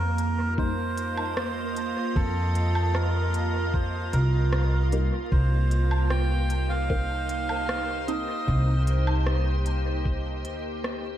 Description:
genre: ambient dub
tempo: 76 BPM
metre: 4/4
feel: straight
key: C minor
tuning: A4 = 443 Hz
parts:
  - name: melodica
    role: melody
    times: 0.0-8.8 s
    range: A4 to G5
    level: -32 LUFS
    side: right 2 dB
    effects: dub echo
  - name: soft additive organ-like pad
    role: sustained chords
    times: 0.0-11.2 s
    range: Bb3 to Eb5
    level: -32 LUFS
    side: right 2 dB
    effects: ensemble chorus, built-in reverb
  - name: upright bass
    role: bass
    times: 0.0-11.2 s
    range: C2 to F2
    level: -25 LUFS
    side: equal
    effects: none
  - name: organic electronic drum kit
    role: drums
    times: 0.2-11.0 s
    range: hi-hat, rim click, woodblock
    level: -36 LUFS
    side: equal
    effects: overdrive, dub echo
  - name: filtered dub chord stab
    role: stabs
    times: 0.6-8.2 s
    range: G3 to Eb4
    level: -36 LUFS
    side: left 1 dB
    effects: phaser, ensemble chorus, dub echo
  - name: electronic kick drum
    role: drums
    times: 0.6-10.2 s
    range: none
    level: -27 LUFS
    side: equal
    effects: none
room: little or no reverb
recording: echo-heavy mix, vinyl crackle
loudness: -23 LUFS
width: side -11 dB against mid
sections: 0.0-11.2 A section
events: fade-out 9.5-11.2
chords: 0.0 F9sus4; 5.3 Cm7

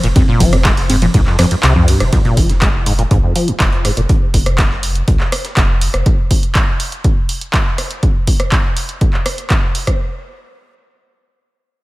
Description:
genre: acid house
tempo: 122 BPM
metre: 4/4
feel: straight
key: F minor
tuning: A4 = 440 Hz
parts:
  - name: liquid acid bass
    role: riff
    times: 0.0-4.0 s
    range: F2 to Ab3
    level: -16 LUFS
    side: equal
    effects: chorus, overdrive, sidechain pumping, digital delay
  - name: warm sub bass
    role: bass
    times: 0.0-6.0 s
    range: F1 to C2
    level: -17 LUFS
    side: equal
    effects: sidechain pumping
  - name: breakbeat sampler-style drum kit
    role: drums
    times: 0.0-5.9 s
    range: hi-hat, snare drum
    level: -30 LUFS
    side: equal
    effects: none
  - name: punchy analog drum machine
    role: drums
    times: 0.0-10.0 s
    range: congas, handclaps, hi-hat, ride cymbal, rim click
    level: -18 LUFS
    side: equal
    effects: none
  - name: electronic kick drum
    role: drums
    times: 0.2-10.0 s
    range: none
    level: -14 LUFS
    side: equal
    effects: none
room: little or no reverb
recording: none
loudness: -12 LUFS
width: side -19 dB against mid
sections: 0.0-2.1 A section; 2.1-10.0 B section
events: drop 0.0-2.1; kick drops out 1.6-2.1; filter sweep on acid bass 2.1-4.1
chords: 0.0 F5; 2.1 N.C.

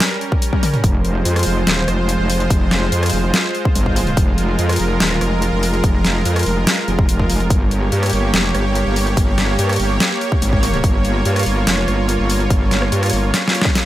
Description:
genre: heavy wobble dubstep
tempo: 144 BPM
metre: 4/4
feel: half-time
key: F minor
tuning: A4 = 441 Hz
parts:
  - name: supersaw pad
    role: sustained chords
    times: 0.0-13.9 s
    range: G3 to Db5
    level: -21 LUFS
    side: right 1 dB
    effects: sidechain pumping
  - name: dubstep drum kit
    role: drums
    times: 0.0-13.8 s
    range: hi-hat, rim click, snare drum, toms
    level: -19 LUFS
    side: left 1 dB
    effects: overdrive
  - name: electronic kick drum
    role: drums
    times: 0.3-13.7 s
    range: none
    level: -17 LUFS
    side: equal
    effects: overdrive
  - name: metallic wobble bass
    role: bass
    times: 0.8-13.3 s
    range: Eb1 to G2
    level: -18 LUFS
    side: equal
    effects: distortion, chorus, overdrive
room: digital ambience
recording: none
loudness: -14 LUFS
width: side -14 dB against mid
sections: 0.0-13.9 A section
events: drum fill 0.5-0.8, 13.3-13.9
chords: 0.0 Gdim; 0.8 Fm; 7.5 Gdim

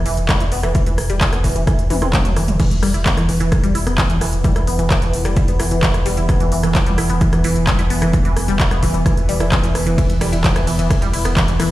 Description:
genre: driving peak-time techno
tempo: 130 BPM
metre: 4/4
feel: straight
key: E minor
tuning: A4 = 443 Hz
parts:
  - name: resonant blip pluck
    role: riff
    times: 0.0-11.7 s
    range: E3 to E4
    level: -22 LUFS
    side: equal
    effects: phaser, tube saturation, sidechain pumping, dub echo
  - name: saturated sub bass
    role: bass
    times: 0.0-11.7 s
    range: E1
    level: -22 LUFS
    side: equal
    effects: tube saturation, sidechain pumping, low-pass filter
  - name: techno drum kit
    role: drums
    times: 0.1-11.7 s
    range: crash cymbal, handclaps, hi-hat, ride cymbal, rim click, toms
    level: -22 LUFS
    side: equal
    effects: none
  - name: electronic kick drum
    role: drums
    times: 0.3-11.5 s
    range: none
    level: -17 LUFS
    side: equal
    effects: none
  - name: analog drone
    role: drone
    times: 3.8-11.7 s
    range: E3 to B3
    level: -24 LUFS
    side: equal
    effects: chorus, sidechain pumping
room: light reverb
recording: played on a big sound system in a bare room, stone room reverb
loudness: -14 LUFS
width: side -16 dB against mid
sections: 0.0-11.7 A section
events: drum fill 1.9-2.6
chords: 0.0 E5

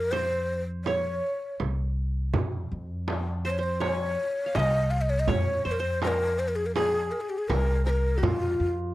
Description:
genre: Arabic maqam ensemble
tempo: 81 BPM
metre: 4/4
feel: straight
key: F maqam bayati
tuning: A4 = 442 Hz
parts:
  - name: breathy mellow ney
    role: melody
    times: 0.0-8.7 s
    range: F4 to F5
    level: -28 LUFS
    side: left 1 dB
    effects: none
  - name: qanun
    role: second line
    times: 0.0-8.9 s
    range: F4 to F5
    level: -34 LUFS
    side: right 3 dB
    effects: none
  - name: upright bass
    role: bass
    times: 0.0-8.9 s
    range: C2 to F2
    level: -29 LUFS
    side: equal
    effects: none
  - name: frame drum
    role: percussion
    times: 0.1-8.4 s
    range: none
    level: -33 LUFS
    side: right 6 dB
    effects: none
  - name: darbuka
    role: percussion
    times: 2.3-8.5 s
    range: none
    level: -34 LUFS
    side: left 2 dB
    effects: none
room: little or no reverb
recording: dry, close 1970s-style studio recording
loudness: -25 LUFS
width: side -16 dB against mid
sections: 0.0-8.9 A section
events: none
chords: none

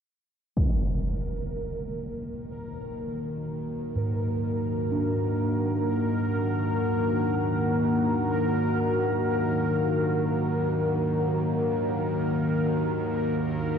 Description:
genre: dark ambient drone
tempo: free time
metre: none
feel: none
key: Eb harmonic minor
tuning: A4 = 440 Hz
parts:
  - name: deep dark ambient pad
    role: sustained chords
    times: 1.8-13.8 s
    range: Eb3 to Bb4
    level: -27 LUFS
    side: left 1 dB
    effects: chorus, built-in reverb
  - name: bowed-like drone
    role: drone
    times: 1.5-13.8 s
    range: Eb2 to Eb3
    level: -33 LUFS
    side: equal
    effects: built-in reverb
  - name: impact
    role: percussion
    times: 0.6-0.8 s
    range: none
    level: -30 LUFS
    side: equal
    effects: low-pass filter on sfx
  - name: bubbling stepped-filter texture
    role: texture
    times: 0.6-13.8 s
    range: Bb4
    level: -34 LUFS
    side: right 1 dB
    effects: chorus, built-in reverb
  - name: quartz singing bowl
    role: arpeggios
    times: 4.0-10.7 s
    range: Ab2 to D4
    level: -30 LUFS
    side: right 2 dB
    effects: diffuse ambient delay
room: wet cathedral reverb, RT60 6.7 s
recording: worn, warbling old tape, cassette tape, warbly pitch drift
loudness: -24 LUFS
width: side -7 dB against mid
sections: 0.6-13.8 A section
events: fade-in on synth drone 0.6-13.8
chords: 0.6 Ebm

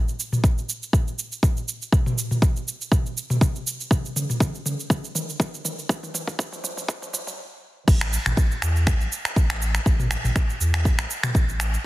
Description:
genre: afro house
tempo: 121 BPM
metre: 4/4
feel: swing 54% on 16ths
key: unclear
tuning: A4 = 440 Hz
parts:
  - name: house drum kit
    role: drums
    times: 0.1-11.8 s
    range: crash cymbal, finger snaps, shaker, toms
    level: -26 LUFS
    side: equal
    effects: soft clipping on snare
  - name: electronic kick drum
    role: drums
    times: 0.4-11.5 s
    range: none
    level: -20 LUFS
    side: equal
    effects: none
  - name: warm sub bass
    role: bass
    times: 7.9-11.8 s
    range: A1 to E2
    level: -24 LUFS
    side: equal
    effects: sidechain pumping
room: little or no reverb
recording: dense, heavily limited modern master, high-pass filter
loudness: -21 LUFS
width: side -17 dB against mid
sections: 0.0-7.9 A section; 7.9-11.9 B section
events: build-up 0.0-7.9; drum fill 0.0-7.4; filter sweep 0.0-7.9; stop 7.4-7.9; drop 7.9-11.9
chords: none

